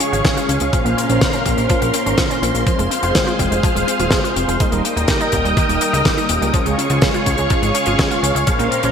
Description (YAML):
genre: italo disco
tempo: 124 BPM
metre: 4/4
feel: straight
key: unclear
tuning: A4 = 440 Hz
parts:
  - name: string machine, full ensemble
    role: sustained chords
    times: 0.0-8.9 s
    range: Db4 to Eb6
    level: -20 LUFS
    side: equal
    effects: ensemble chorus, vintage 12-bit sampler grit
  - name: analog pluck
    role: arpeggios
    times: 0.0-8.9 s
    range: Eb3 to Ab4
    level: -24 LUFS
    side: right 3 dB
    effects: chorus, cassette tape, ping-pong delay
  - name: mellow synth brass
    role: stabs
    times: 0.0-8.9 s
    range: Bb2 to Db5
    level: -22 LUFS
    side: left 1 dB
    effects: chorus, ping-pong delay
  - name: damped 70s drum kit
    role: drums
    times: 0.0-8.9 s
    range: hi-hat, snare drum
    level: -21 LUFS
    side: left 1 dB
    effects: small room ambience, gated reverb
  - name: fat analog bass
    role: bass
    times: 0.1-8.9 s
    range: Eb1 to Db2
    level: -22 LUFS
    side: equal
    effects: none
  - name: electronic kick drum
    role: drums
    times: 0.2-8.6 s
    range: none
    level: -20 LUFS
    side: equal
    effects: small room ambience
room: moderate lush hall reverb, RT60 1.6 s, small room reverb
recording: bright 1980s-style digital production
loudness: -14 LUFS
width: side -7 dB against mid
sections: 0.0-8.9 A section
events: none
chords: 0.0 Db; 0.7 Bbmadd9; 2.7 Fm; 4.6 Eb; 6.5 Db